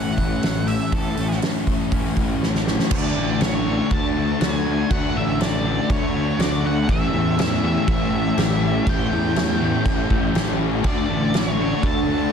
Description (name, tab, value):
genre	rock, shoegaze and dream pop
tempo	121 BPM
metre	4/4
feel	straight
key	unclear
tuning	A4 = 440 Hz
part	octave-fuzz lead guitar	melody	0.0-12.3 s	A4 to A5	-29 LUFS	right 2 dB	distortion, tape echo
part	twangy electric guitar	arpeggios	0.0-12.3 s	E3 to G4	-34 LUFS	left 10 dB	lush chorus, tape echo
part	overdriven electric guitar	riff	0.0-12.3 s	A2 to G4	-28 LUFS	right 12 dB	reverse reverb
part	thick fuzz guitar	riff	0.0-12.3 s	A2 to D4	-25 LUFS	left 11 dB	distortion, ensemble chorus
part	fuzz picked electric bass	bass	0.0-12.2 s	A1 to E2	-25 LUFS	right 1 dB	overdrive
part	loose indie drum kit	drums	0.2-11.9 s	crash cymbal, hi-hat, kick drum, snare drum	-24 LUFS	right 1 dB	none
part	sludgy distorted guitar	riff	2.9-12.3 s	A2 to D4	-28 LUFS	equal	overdrive
part	granular cloud pad	sustained chords	11.8-12.3 s	D4 to C#6	-30 LUFS	right 2 dB	built-in reverb
room	small room ambience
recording	dense, heavily limited modern master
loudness	-18 LUFS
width	side -7 dB against mid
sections	0.0-2.9 A section; 2.9-12.3 B section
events	drum fill 2.4-2.9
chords	0.0 A7; 2.9 Dmaj7; 6.9 A7; 10.8 Dmaj7